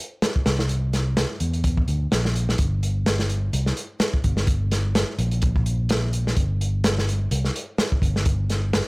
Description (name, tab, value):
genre	breakbeat, breaks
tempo	127 BPM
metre	4/4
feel	swing 56% on 16ths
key	G dorian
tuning	A4 = 441 Hz
part	crunchy breakbeat drum kit	drums	0.2-8.9 s	hi-hat, kick drum, snare drum	-23 LUFS	equal	none
part	fingered electric bass	bass	0.5-8.8 s	G1 to E2	-22 LUFS	equal	none
room	little or no reverb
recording	none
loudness	-20 LUFS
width	side -26 dB against mid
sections	0.0-8.9 A section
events	none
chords	none